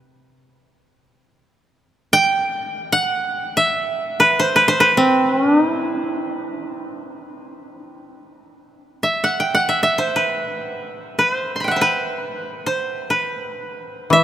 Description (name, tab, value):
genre	japanese traditional, Japanese chamber music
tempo	free time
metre	none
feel	none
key	E hirajoshi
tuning	A4 = 439 Hz
part	koto	melody	0.0-14.2 s	E4 to C6	-17 LUFS	right 1 dB	none
part	koto	accompaniment	14.1-14.2 s	E3	-13 LUFS	left 3 dB	none
room	wet cathedral reverb, RT60 6.3 s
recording	none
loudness	-16 LUFS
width	side -11 dB against mid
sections	0.0-8.0 A section; 8.0-14.2 A section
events	none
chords	none